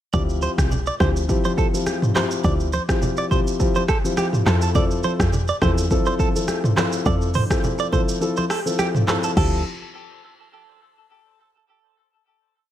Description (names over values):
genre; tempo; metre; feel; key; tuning
afrobeats; 104 BPM; 4/4; swing 55% on 16ths; D minor; A4 = 439 Hz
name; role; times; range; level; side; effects
dark grand piano; accompaniment; 0.1-9.6 s; F3 to A4; -24 LUFS; left 2 dB; none
direct-recorded clean electric guitar; riff; 0.1-9.6 s; G4 to D5; -27 LUFS; right 5 dB; wide subtle chorus, ping-pong delay
woody log drum bass; bass; 0.1-9.6 s; C2 to F2; -21 LUFS; equal; none
deep house drum kit; drums; 0.1-9.5 s; crash cymbal, handclaps, hi-hat, kick drum, rim click, shaker, toms; -22 LUFS; equal; overdrive
congas; percussion; 0.1-9.6 s; none; -30 LUFS; right 1 dB; none
room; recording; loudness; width
little or no reverb; none; -18 LUFS; side -12 dB against mid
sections
0.1-9.4 chorus; 9.4-11.7 final chord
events
kick muted 8.2-9.4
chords
0.1 Dm11; 4.5 Fmaj7; 9.4 Dm11